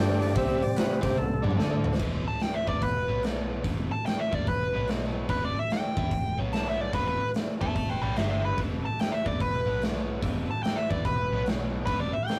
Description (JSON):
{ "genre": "blues rock power trio and southern rock", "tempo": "146 BPM", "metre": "4/4", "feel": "swing 65% on 8ths", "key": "E minor", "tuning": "A4 = 439 Hz", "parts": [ { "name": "overdriven tonewheel organ", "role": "sustained chords", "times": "0.0-2.0, 8.6-12.4 s", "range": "C3 to G5", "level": "-36 LUFS", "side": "equal", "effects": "none" }, { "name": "biting overdriven guitar", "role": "riff", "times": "0.0-12.2 s", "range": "E2 to C5", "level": "-37 LUFS", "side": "equal", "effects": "none" }, { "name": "vintage muted fingered electric bass", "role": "bass", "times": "0.0-12.2 s", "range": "E1 to C3", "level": "-35 LUFS", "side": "equal", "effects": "none" }, { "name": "big rock drum kit", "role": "drums", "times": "0.1-12.4 s", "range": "crash cymbal, hi-hat, kick drum, snare drum, toms", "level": "-32 LUFS", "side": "equal", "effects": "none" }, { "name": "nasal lead guitar with a parked wah", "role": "melody", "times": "2.3-12.4 s", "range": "G4 to A5", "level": "-32 LUFS", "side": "equal", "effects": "overdrive" } ], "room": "moderate booth ambience, RT60 0.3 s", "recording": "rough rehearsal-room recording, warm saturation", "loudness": "-28 LUFS", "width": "mono", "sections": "0.0-2.0 A section; 2.0-12.4 B section", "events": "tonewheel organ solo 0.0-2.0; drum fill 1.2-2.0", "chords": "0.4 C5; 1.6 D5; 2.0 E5; 3.0 B5; 3.6 E5; 4.7 B5; 5.3 Em; 6.3 B5; 6.9 E5; 8.2 G5; 8.6 Em; 9.6 B5; 10.2 Em; 11.3 B5; 11.9 Em" }